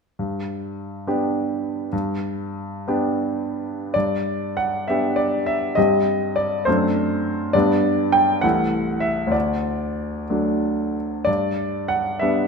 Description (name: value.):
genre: classical, romantic character piece for solo piano.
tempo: 51-73 BPM (dotted quarters).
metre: 6/8.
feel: rubato.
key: G major.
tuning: A4 = 442 Hz.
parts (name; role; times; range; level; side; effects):
clear grand piano; solo; 0.2-12.5 s; C2 to G5; -20 LUFS; equal; none.
room: wet large studio reverb, RT60 1.4 s.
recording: none.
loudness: -20 LUFS.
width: side -5 dB against mid.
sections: 0.2-3.9 A section; 3.9-12.5 B section.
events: none.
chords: 0.2 G; 5.8 Cm/G; 6.7 D7/F#; 7.5 G; 8.4 Am/C; 9.3 D; 11.3 G.